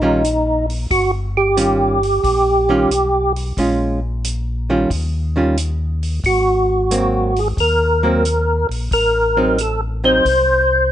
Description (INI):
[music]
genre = soul jazz organ trio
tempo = 90 BPM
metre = 4/4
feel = swing 68% on 8ths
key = Eb mixolydian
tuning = A4 = 440 Hz
[part]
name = percussive tonewheel organ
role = melody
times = 0.0-10.9 s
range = Eb4 to C5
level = -15 LUFS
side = equal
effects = slow rotary speaker, chorus vibrato
[part]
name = archtop guitar, miked and amplified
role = accompaniment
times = 0.0-10.2 s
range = Eb3 to F4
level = -19 LUFS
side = right 1 dB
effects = none
[part]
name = mellow tonewheel organ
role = bass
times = 0.0-10.9 s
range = G1 to Eb2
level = -21 LUFS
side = left 1 dB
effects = slow rotary speaker
[part]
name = vintage drum kit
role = drums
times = 0.2-10.5 s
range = hi-hat, kick drum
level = -27 LUFS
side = equal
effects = none
[sound]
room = light reverb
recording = nothing above 10.3 kHz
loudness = -14 LUFS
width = side -11 dB against mid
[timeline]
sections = 0.0-10.9 A section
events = none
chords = 0.0 Eb9; 3.6 Bbm7; 4.9 Eb9; 6.2 Ab9; 8.9 Adim7